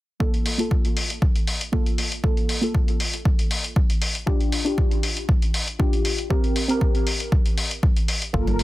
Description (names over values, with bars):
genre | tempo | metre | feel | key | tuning
deep house | 118 BPM | 4/4 | swing 53% on 16ths | unclear | A4 = 440 Hz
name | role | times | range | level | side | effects
deep mellow chord stab | stabs | 0.2-8.6 s | Bb3 to Bb4 | -27 LUFS | equal | chorus, sidechain pumping, tape echo
electronic kick drum | drums | 0.2-8.4 s | none | -21 LUFS | equal | overdrive
electronic hi-hat | drums | 0.3-8.6 s | none | -27 LUFS | left 2 dB | none
sub bass with octave | bass | 8.3-8.6 s | G1 | -24 LUFS | equal | sidechain pumping
soft string machine | texture | 8.3-8.6 s | Bb4 | -31 LUFS | left 2 dB | phaser, ensemble chorus, sidechain pumping
congas | percussion | 8.5-8.6 s | none | -29 LUFS | right 1 dB | none
room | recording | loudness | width
little or no reverb | dense, heavily limited modern master | -20 LUFS | side -17 dB against mid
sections
0.2-8.6 A section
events
filter sweep on synth stab 0.2-8.6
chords
0.2 Fadd11/Bb; 4.3 Dmadd11; 6.3 Gmadd11/C